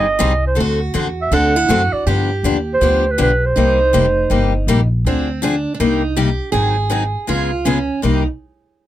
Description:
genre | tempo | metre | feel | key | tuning
acoustic string swing (jazz manouche) | 161 BPM | 4/4 | swing 63% on 8ths | C minor | A4 = 439 Hz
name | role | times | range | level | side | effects
mellow clarinet | melody | 0.0-4.7 s | B4 to F#5 | -16 LUFS | right 3 dB | none
picked steel-string acoustic guitar | second line | 0.0-8.3 s | C4 to Ab4 | -22 LUFS | right 4 dB | none
picked steel-string acoustic guitar | accompaniment | 0.0-8.2 s | C3 to A4 | -18 LUFS | left 4 dB | none
upright bass | bass | 0.0-8.3 s | F1 to G2 | -19 LUFS | equal | none
room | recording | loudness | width
light reverb | none | -14 LUFS | side -13 dB against mid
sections
0.0-5.0 A section; 5.0-8.0 B section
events
none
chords
0.0 Abmaj7; 0.6 D7; 2.1 G7; 3.6 Cm7; 5.0 Dm7b5; 5.8 Cm7; 6.5 Ab7; 7.3 Db7; 8.0 Cm7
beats
0.21 | 0.58 0.95 1.33 1.70 | 2.07 2.44 2.82 3.19 | 3.56 3.93 4.30 4.68 | 5.05 5.42 5.79 6.17 | 6.54 6.91 7.29 7.66 | 8.03

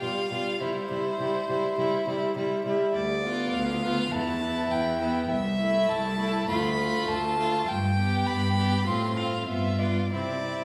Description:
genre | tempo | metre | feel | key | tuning
quick classical-period movement for string quartet | 102 BPM | 4/4 | rubato | C major | A4 = 440 Hz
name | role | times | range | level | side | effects
rich violin | melody | 0.0-10.6 s | C5 to C6 | -33 LUFS | equal | none
clear violin | second line | 0.0-10.6 s | E4 to G4 | -33 LUFS | equal | none
warm viola | accompaniment | 0.0-10.6 s | G3 to C4 | -33 LUFS | equal | none
rich cello | bass | 0.0-10.6 s | C2 to C3 | -33 LUFS | equal | none
room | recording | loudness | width
wet recital hall reverb, RT60 1.6 s | recorded in a church or concert hall | -27 LUFS | mono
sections
0.0-10.6 A section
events
none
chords
0.0 G7/B; 0.6 C; 2.9 Bdim/D; 4.1 Em; 5.3 Am/C; 6.5 Dm; 7.7 G; 8.9 F/A; 9.5 G7; 10.1 C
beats
0.02 | 0.61 1.20 1.78 2.36 | 2.95 3.54 4.12 4.71 | 5.31 5.90 6.49 7.09 | 7.68 8.27 8.87 9.48 | 10.13

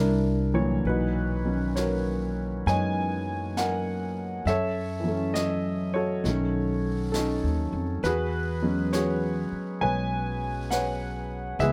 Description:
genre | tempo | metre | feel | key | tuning
jazz ballad | 67 BPM | 4/4 | swing 66% on 8ths | B major | A4 = 437 Hz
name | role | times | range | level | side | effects
warm grand piano | accompaniment | 0.0-11.7 s | A#2 to G#5 | -29 LUFS | equal | none
upright bass | bass | 0.0-11.7 s | B1 to F#2 | -32 LUFS | equal | none
jazz brush drum kit | drums | 0.9-11.7 s | brushed snare drum, hi-hat, snare drum | -41 LUFS | equal | none
room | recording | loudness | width
light reverb | none | -27 LUFS | mono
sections
0.8-11.7 A section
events
none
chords
0.0 F#7b13; 0.8 Bmaj9; 4.4 F#m7; 6.2 B9; 8.0 E69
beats
| 0.84 1.75 2.65 3.55 | 4.45 5.34 6.24 7.14 | 8.03 8.93 9.82 10.71 | 11.60

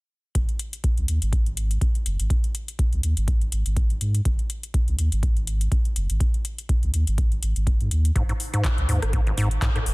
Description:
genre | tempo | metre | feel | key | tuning
acid house | 123 BPM | 4/4 | swing 56% on 16ths | unclear | A4 = 440 Hz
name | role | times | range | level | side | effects
warm sub bass | bass | 0.4-9.9 s | F#1 to G#2 | -23 LUFS | equal | tube saturation, sidechain pumping
electro analog drum machine | drums | 0.4-9.9 s | handclaps, hi-hat, rim click | -32 LUFS | left 2 dB | none
electronic kick drum | drums | 0.4-9.7 s | none | -23 LUFS | equal | none
acid bass, square | riff | 8.2-9.8 s | G#1 to A#2 | -25 LUFS | equal | sidechain pumping, analog delay
room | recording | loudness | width
little or no reverb | dense, heavily limited modern master | -21 LUFS | side -25 dB against mid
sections
0.4-9.9 A section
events
filter sweep on sub bass 0.4-9.9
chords
0.4 G#5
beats
| 0.35 0.84 1.33 1.81 | 2.30 2.79 3.28 3.77 | 4.25 4.74 5.23 5.72 | 6.21 6.69 7.18 7.67 | 8.16 8.64 9.13 9.62

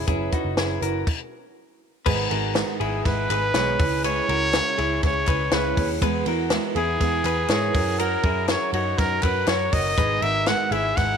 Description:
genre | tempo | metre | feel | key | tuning
jangly indie pop | 121 BPM | 4/4 | straight | G# minor | A4 = 441 Hz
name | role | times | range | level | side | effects
picked steel-string acoustic guitar | accompaniment | 0.0-11.2 s | G#2 to B4 | -28 LUFS | right 13 dB | none
direct-recorded clean electric guitar | arpeggios | 0.0-11.2 s | D#4 to C#5 | -28 LUFS | left 13 dB | slapback echo
vintage muted picked electric bass | bass | 0.0-11.2 s | F#1 to G#2 | -28 LUFS | equal | none
compact cocktail drum kit | drums | 0.1-11.1 s | crash cymbal, hi-hat, kick drum, ride cymbal, snare drum | -26 LUFS | left 1 dB | none
group handclap | percussion | 2.6-10.6 s | none | -38 LUFS | left 14 dB | none
breathy trumpet | melody | 2.8-11.2 s | G#4 to F#5 | -24 LUFS | equal | slapback echo
room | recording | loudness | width
light reverb, studio reverb | 1960s-style stereo with parts hard left and right | -20 LUFS | side -7 dB against mid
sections
0.0-2.1 A section; 2.1-11.2 B section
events
stop 1.1-2.1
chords
0.0 F#7sus4; 2.1 G#m; 3.8 C#m; 6.0 E; 7.8 F#; 10.0 G#m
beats
| 0.08 0.58 1.07 1.57 | 2.07 2.56 3.06 3.55 | 4.04 4.54 5.03 5.53 | 6.02 6.52 7.01 7.50 | 8.00 8.49 8.99 9.48 | 9.98 10.47 10.97

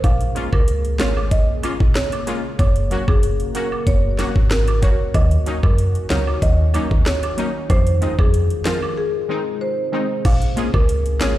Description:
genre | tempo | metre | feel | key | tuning
dancehall | 94 BPM | 4/4 | straight | Bb minor | A4 = 442 Hz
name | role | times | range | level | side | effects
marimba with medium mallets | melody | 0.0-11.3 s | Ab4 to F5 | -25 LUFS | right 1 dB | digital delay
deep dark ambient pad | sustained chords | 0.0-11.4 s | C3 to Ab4 | -30 LUFS | left 2 dB | chorus, built-in reverb, sidechain pumping
woody FM bass | bass | 0.0-11.4 s | Gb1 to Gb2 | -19 LUFS | equal | none
island pop drum kit | drums | 0.0-11.4 s | crash cymbal, hi-hat, kick drum, rim click, snare drum | -18 LUFS | equal | none
woodblock and cabasa | percussion | 0.0-11.4 s | none | -34 LUFS | right 3 dB | none
synth brass stab | accompaniment | 0.3-11.3 s | Eb3 to Ab4 | -27 LUFS | left 1 dB | chorus
room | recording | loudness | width
digital ambience | played on a big sound system in a bare room, large studio reverb | -16 LUFS | side -14 dB against mid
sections
0.0-10.3 A section; 10.3-11.4 A section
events
break 9.0-10.3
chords
0.0 Bbm7; 2.6 Gb; 5.1 Ebm7; 7.7 Fm7; 9.0 Ab; 10.3 Bbm7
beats
| 0.04 0.68 1.32 1.95 | 2.59 3.23 3.87 4.51 | 5.14 5.78 6.42 7.06 | 7.70 8.34 8.97 9.61 | 10.25 10.89

